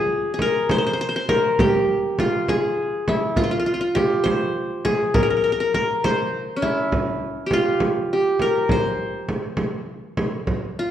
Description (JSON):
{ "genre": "Arabic maqam ensemble", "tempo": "68 BPM (dotted quarters)", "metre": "6/8", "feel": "straight", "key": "C maqam hijaz", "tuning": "A4 = 440 Hz", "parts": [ { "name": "qanun", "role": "melody", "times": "0.0-10.9 s", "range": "Db4+25c to C5", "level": "-20 LUFS", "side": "left 1 dB", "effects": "none" }, { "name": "frame drum", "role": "percussion", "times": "0.4-10.6 s", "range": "none", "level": "-24 LUFS", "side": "right 1 dB", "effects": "none" } ], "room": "wet recital hall reverb, RT60 1.3 s", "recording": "worn, warbling old tape, cassette tape, warbly pitch drift", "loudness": "-19 LUFS", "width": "side -10 dB against mid", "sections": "0.0-10.5 A section", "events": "none", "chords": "none" }